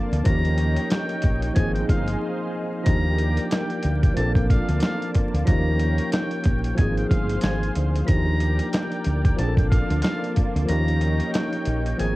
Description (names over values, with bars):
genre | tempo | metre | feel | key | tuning
hip hop, boom-bap hip-hop | 92 BPM | 4/4 | swing 58% on 16ths | unclear | A4 = 441 Hz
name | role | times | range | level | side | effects
tine electric piano | accompaniment | 0.0-12.2 s | F3 to A4 | -27 LUFS | equal | overdrive, fast stereo tremolo, high-pass filter, low-pass filter, cassette tape
lush unison pad | sustained chords | 0.0-12.2 s | Bb3 to A5 | -32 LUFS | left 1 dB | chorus, high-pass filter, low-pass filter, cassette tape
deep dub fingered electric bass | bass | 0.1-12.2 s | G1 to Eb2 | -23 LUFS | equal | transformer saturation
dusty soul sampler-style drum kit | drums | 0.1-12.2 s | hi-hat, kick drum, snare drum | -22 LUFS | equal | cassette tape
trumpet with metal mute | melody | 0.3-12.2 s | F5 to Bb5 | -31 LUFS | equal | high-pass filter, low-pass filter, cassette tape
room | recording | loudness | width
little or no reverb | home recording on cassette, vinyl crackle | -20 LUFS | side -19 dB against mid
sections
0.0-12.2 A section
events
break 2.2-2.9; kick muted 10.7-12.2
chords
0.3 Eb7; 1.6 Ab6; 2.9 Ebmaj7; 4.2 Bbmaj7; 5.5 Eb7; 6.8 Ab6; 8.1 Ebmaj7; 9.4 Bbmaj7; 10.7 Eb7